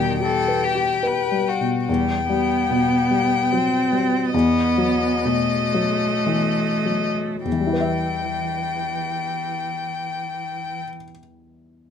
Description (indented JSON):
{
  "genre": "classical, slow romantic movement for piano quartet",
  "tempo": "48-75 BPM",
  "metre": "3/4",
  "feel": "rubato",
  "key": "E minor",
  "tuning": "A4 = 436 Hz",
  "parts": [
    { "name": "rich violin", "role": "melody", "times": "0.0-10.8 s", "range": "D#5 to G5", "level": "-24 LUFS", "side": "left 6 dB", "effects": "none" },
    { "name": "clear violin", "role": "second line", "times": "0.0-1.9 s", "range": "F#4 to B4", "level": "-26 LUFS", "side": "left 5 dB", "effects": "none" },
    { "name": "rich cello", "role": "second line", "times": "0.0-10.8 s", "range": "D#3 to C4", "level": "-24 LUFS", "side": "right 3 dB", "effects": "none" },
    { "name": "warm baby grand piano", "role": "accompaniment", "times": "0.0-11.9 s", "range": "E2 to E5", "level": "-23 LUFS", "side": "left 3 dB", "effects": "none" }
  ],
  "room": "light reverb",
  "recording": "none",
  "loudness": "-19 LUFS",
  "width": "side -8 dB against mid",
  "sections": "0.0-1.9 A section; 1.9-7.5 B section; 7.5-10.9 C section",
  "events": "slowing down 0.6-7.5",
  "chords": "0.0 Em; 4.3 B7/E; 7.5 Em"
}